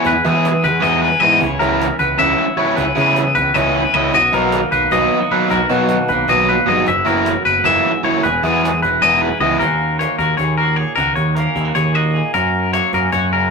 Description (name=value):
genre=math rock and midwest emo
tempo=308 BPM (eighths)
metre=7/8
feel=straight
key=unclear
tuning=A4 = 439 Hz
part: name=twelve-string electric guitar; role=accompaniment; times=0.0-13.5 s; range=E2 to G#4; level=-22 LUFS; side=right 3 dB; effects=none
part: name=twangy electric guitar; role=arpeggios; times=0.0-13.5 s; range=F#4 to E5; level=-16 LUFS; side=left 3 dB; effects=none
part: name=biting overdriven guitar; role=riff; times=0.0-9.6 s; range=B2 to E4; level=-18 LUFS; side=right 1 dB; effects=none
part: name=cajon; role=drums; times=0.0-13.4 s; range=none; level=-33 LUFS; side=right 1 dB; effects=none
part: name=growling picked electric bass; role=bass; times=0.1-13.5 s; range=E1 to E3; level=-21 LUFS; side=equal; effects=overdrive
room=moderate studio reverb, RT60 0.5 s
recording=rough rehearsal-room recording, tube saturation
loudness=-13 LUFS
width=side -4 dB against mid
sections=0.0-9.6 A section; 9.6-13.5 B section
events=none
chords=0.0 Emaj7; 1.4 C#m7; 4.1 Bmaj7; 6.9 F#9sus4; 8.2 Emaj7; 9.6 D#m7; 12.3 F#